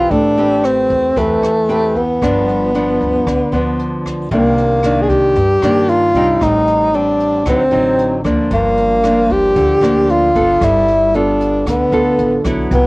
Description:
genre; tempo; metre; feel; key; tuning
bossa nova; 114 BPM; 4/4; straight; C minor from 4.3 s; A4 = 439 Hz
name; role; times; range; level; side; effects
breathy tenor saxophone; melody; 0.0-12.9 s; A3 to Ab4; -13 LUFS; equal; cassette tape
nylon-string guitar; accompaniment; 0.0-12.9 s; G2 to B4; -17 LUFS; equal; cassette tape
upright bass; bass; 0.0-12.9 s; G1 to G2; -22 LUFS; equal; none
jazz brush drum kit; drums; 0.1-12.8 s; hi-hat, kick drum, rim click; -26 LUFS; equal; cassette tape
room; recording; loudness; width
light reverb; home recording on cassette; -11 LUFS; side -25 dB against mid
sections
0.0-4.3 A section; 4.3-12.9 B section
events
none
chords
0.1 Am9; 2.2 G7; 4.3 Cm9; 6.4 Am7b5; 7.5 D7b9; 8.5 Gm7; 10.6 G9

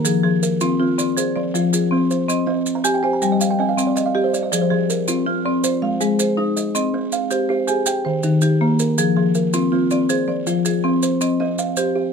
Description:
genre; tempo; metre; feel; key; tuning
southern african traditional, mbira-style interlocking cycle; 108 BPM (dotted quarters); 12/8; straight; F dorian; A4 = 441 Hz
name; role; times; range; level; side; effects
buzzing kalimba; arpeggios; 0.0-12.1 s; Eb3 to Bb5; -22 LUFS; right 6 dB; none
marimba with medium hard mallets; arpeggios; 0.0-12.1 s; Eb3 to Ab5; -18 LUFS; left 3 dB; none
maracas; percussion; 0.1-11.9 s; none; -25 LUFS; right 5 dB; none
room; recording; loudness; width
light reverb; close, detailed microphones; -17 LUFS; side -6 dB against mid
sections
0.0-12.1 A section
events
kalimba fill 2.6-4.5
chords
0.1 Fm; 2.3 Cm; 4.5 Fm; 5.6 Ab; 6.8 Cm; 7.9 Eb; 9.0 Fm; 11.2 Cm

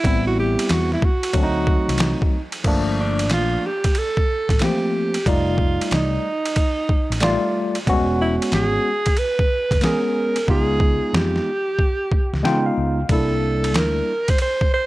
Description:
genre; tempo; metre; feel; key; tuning
hip hop, jazz-hop; 92 BPM; 4/4; swing 64% on 16ths; unclear; A4 = 440 Hz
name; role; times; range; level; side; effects
breathy alto saxophone; melody; 0.0-14.9 s; D4 to C5; -22 LUFS; right 2 dB; none
tine electric piano; accompaniment; 0.0-14.1 s; F3 to G5; -22 LUFS; left 1 dB; medium stereo tremolo
mellow fretless electric bass; bass; 0.0-14.0 s; E1 to C#3; -24 LUFS; equal; none
boom bap sampler-style drum kit; drums; 0.0-14.7 s; crash cymbal, hi-hat, kick drum, ride cymbal, snare drum; -22 LUFS; equal; overdrive
room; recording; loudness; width
little or no reverb; none; -17 LUFS; side -18 dB against mid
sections
0.0-2.7 A section; 2.7-14.9 B section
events
hi-hats muted 10.5-13.1; tine electric piano fill 12.1-13.1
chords
0.0 Am9; 1.4 D7b9; 2.7 Gm9; 5.3 F13; 7.9 E69; 10.5 C#9; 13.1 C7

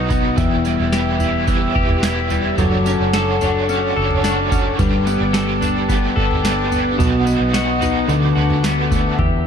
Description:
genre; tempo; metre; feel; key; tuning
dream pop; 109 BPM; 4/4; straight; unclear; A4 = 440 Hz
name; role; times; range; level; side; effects
overdriven electric guitar; accompaniment; 0.0-9.2 s; B2 to C#5; -24 LUFS; right 5 dB; tremolo, ensemble chorus
mellow tonewheel organ; sustained chords; 0.0-9.5 s; A4 to E6; -23 LUFS; left 1 dB; slow rotary speaker
clean electric guitar; arpeggios; 0.0-9.5 s; E2 to A4; -19 LUFS; left 3 dB; wide subtle chorus, ping-pong delay
vintage muted fingered electric bass; bass; 0.0-9.5 s; E1 to E2; -23 LUFS; equal; none
booming analog drum machine; drums; 0.1-9.4 s; kick drum, snare drum, tambourine, toms; -21 LUFS; right 1 dB; overdrive
room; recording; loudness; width
wet recital hall reverb, RT60 1.5 s; dark, warm production; -15 LUFS; side -7 dB against mid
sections
0.0-9.2 A section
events
none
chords
0.4 Em; 2.6 Dmaj7/F#; 4.8 Gadd9; 7.0 B; 8.1 D6

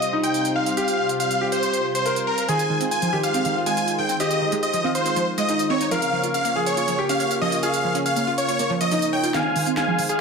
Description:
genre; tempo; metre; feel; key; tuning
uplifting trance; 140 BPM; 4/4; straight; F minor; A4 = 441 Hz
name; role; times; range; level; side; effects
big supersaw lead; melody; 0.0-10.2 s; Ab4 to Ab5; -23 LUFS; equal; low-pass filter, ping-pong delay
clear concert grand piano; second line; 0.0-9.3 s; Eb4 to Bb4; -26 LUFS; left 1 dB; digital delay
lush unison pad; sustained chords; 0.0-10.2 s; C3 to Db5; -28 LUFS; equal; chorus
techno drum kit; drums; 0.0-10.2 s; hi-hat, snare drum; -30 LUFS; right 1 dB; none
wide unison pluck; arpeggios; 2.5-10.0 s; Eb3 to Db5; -27 LUFS; right 3 dB; lush chorus, digital delay
room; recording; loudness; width
moderate digital room reverb, RT60 1.2 s, digital ambience; none; -19 LUFS; side -5 dB against mid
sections
0.0-9.3 A section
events
drum fill 9.3-10.2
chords
0.0 Csus4; 2.5 Fm7; 5.9 Bbm; 9.3 Fm7

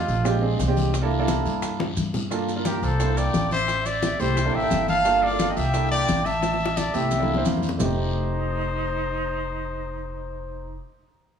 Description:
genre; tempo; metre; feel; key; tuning
Afro-Cuban jazz; 175 BPM; 4/4; straight; F mixolydian; A4 = 440 Hz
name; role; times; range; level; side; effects
clear trumpet; melody; 0.0-0.4, 2.7-10.8 s; F4 to F5; -26 LUFS; left 1 dB; none
breathy bright jazz flute; second line; 0.0-0.3, 2.7-10.8 s; Eb4 to A5; -31 LUFS; right 3 dB; none
warm grand piano; accompaniment; 0.0-10.8 s; Ab3 to D5; -28 LUFS; right 5 dB; none
upright bass; bass; 0.0-10.8 s; F1 to G2; -27 LUFS; equal; none
bongos; percussion; 0.1-7.9 s; none; -31 LUFS; left 5 dB; none
congas; percussion; 0.1-7.9 s; none; -31 LUFS; left 5 dB; none
guiro; percussion; 0.1-7.9 s; none; -39 LUFS; left 5 dB; none
maracas; percussion; 0.1-7.9 s; none; -38 LUFS; right 7 dB; none
room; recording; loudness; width
moderate spring reverb, RT60 2.6 s; studio reverb; -21 LUFS; side -8 dB against mid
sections
0.0-2.3 A section; 2.3-7.8 B section; 7.8-10.5 C section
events
drum fill 1.8-2.3, 6.4-7.8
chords
0.3 Bb13; 0.9 C13; 2.3 Gm9; 3.0 C13; 3.7 Am7; 4.4 C13; 5.1 Gm9; 5.7 C13; 6.4 Am7; 7.1 C13; 7.8 F13

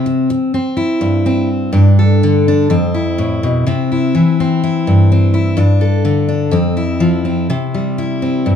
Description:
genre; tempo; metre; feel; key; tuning
highlife; 125 BPM; 4/4; swing 54% on 16ths; C major; A4 = 440 Hz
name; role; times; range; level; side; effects
picked steel-string acoustic guitar; solo; 0.0-8.6 s; F2 to A4; -12 LUFS; left 1 dB; none
room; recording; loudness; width
moderate large studio reverb, RT60 0.9 s; band playing live in one room; -12 LUFS; side -8 dB against mid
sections
0.0-7.5 A section; 7.5-8.6 A section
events
none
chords
0.0 C; 1.7 Gsus2; 2.7 F; 3.7 C; 5.6 Gsus2; 6.5 F5; 7.5 C

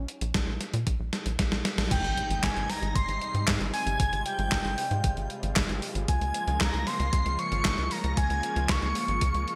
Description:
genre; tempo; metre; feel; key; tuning
synthwave; 115 BPM; 4/4; straight; Ab major; A4 = 442 Hz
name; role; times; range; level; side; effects
expressive synth lead; melody; 0.0-9.6 s; G5 to Db6; -34 LUFS; equal; chorus, delay
tight sequencer bass; bass; 0.0-9.5 s; Ab1 to Bb2; -33 LUFS; equal; none
gated 80s digital drum machine; drums; 0.1-9.6 s; crash cymbal, handclaps, hi-hat, snare drum; -33 LUFS; equal; gated reverb, gated reverb snare
electronic kick drum; drums; 0.3-9.3 s; none; -32 LUFS; equal; none
string machine, violins; second line; 1.9-9.6 s; G6 to Db7; -41 LUFS; equal; ensemble chorus, delay
lush unison pad; sustained chords; 1.9-9.6 s; C3 to F4; -39 LUFS; equal; chorus, phaser, sidechain pumping
impact; sound effects; 1.9-4.0 s; none; -42 LUFS; equal; none
room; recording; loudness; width
moderate lush hall reverb, RT60 2.2 s; bright 1980s-style digital production; -28 LUFS; mono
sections
0.0-1.9 A section; 1.9-9.6 B section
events
drum fill 1.1-1.9; band accent 1.8; impact 1.9-4.0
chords
0.0 N.C.; 1.9 Abmaj7; 6.1 Db6

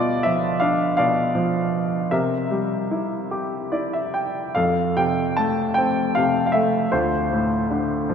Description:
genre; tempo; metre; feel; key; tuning
classical, lyrical solo piano; 48-55 BPM (dotted quarters); 6/8; rubato; unclear; A4 = 440 Hz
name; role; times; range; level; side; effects
clear baby grand piano; solo; 0.0-8.1 s; D2 to A5; -19 LUFS; equal; none
room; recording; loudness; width
wet cathedral reverb, RT60 6.2 s; recorded in a church or concert hall; -19 LUFS; side -7 dB against mid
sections
0.0-4.6 A section; 4.6-8.1 B section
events
grand piano fill 3.3-4.6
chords
0.0 Bdim; 2.1 C7; 4.6 F; 6.9 Dm7

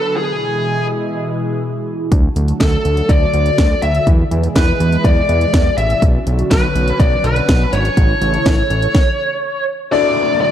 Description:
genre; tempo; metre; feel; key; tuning
synth-pop; 123 BPM; 4/4; straight; E mixolydian; A4 = 440 Hz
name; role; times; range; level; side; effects
bluesy overdriven lead guitar; melody; 0.0-10.5 s; G#4 to E5; -18 LUFS; left 1 dB; distortion, analog delay
phased analog pad; sustained chords; 0.0-10.5 s; B2 to A4; -22 LUFS; right 1 dB; phaser, chorus
fat analog bass; bass; 2.1-8.9 s; G#1 to E2; -17 LUFS; equal; none
house drum kit; drums; 2.1-9.1 s; hi-hat, kick drum, snare drum; -14 LUFS; equal; none
clear concert grand piano; accompaniment; 9.9-10.5 s; D4 to D5; -18 LUFS; left 9 dB; none
downlifter; sound effects; 9.9-10.5 s; none; -23 LUFS; equal; none
room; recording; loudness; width
light reverb, digital ambience; dark, warm production; -13 LUFS; side -10 dB against mid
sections
0.0-9.9 A section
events
stop 8.9-9.9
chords
0.2 E; 2.1 D; 4.1 E; 6.0 Bmadd9; 8.0 A; 9.9 Dadd9

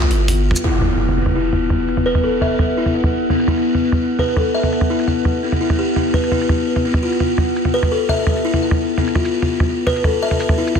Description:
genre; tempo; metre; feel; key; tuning
half-time drum and bass; 169 BPM; 4/4; half-time; E phrygian; A4 = 441 Hz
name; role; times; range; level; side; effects
buzzing kalimba; arpeggios; 0.0-10.7 s; B3 to E5; -19 LUFS; left 2 dB; low-pass filter, digital delay
long sustained 808-style bass; bass; 0.0-0.5 s; G1 to C2; -16 LUFS; equal; none
boom bap sampler-style drum kit; drums; 0.0-10.8 s; crash cymbal, hi-hat, shaker, toms; -20 LUFS; right 1 dB; low-pass filter on hats, low-pass filter on toms, low-pass filter on perc, low-pass filter on snare, low-pass filter on cymbals
metallic inharmonic drone; texture; 0.0-10.8 s; B3; -22 LUFS; left 1 dB; chorus, built-in reverb
impact; sound effects; 0.6-2.1 s; none; -22 LUFS; equal; none
room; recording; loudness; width
moderate echo chamber reverb, RT60 1.4 s, digital ambience; dense, heavily limited modern master; -15 LUFS; side -7 dB against mid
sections
0.6-10.8 A section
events
impact 0.6-2.1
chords
0.0 F5; 0.6 E5; 6.3 N.C.

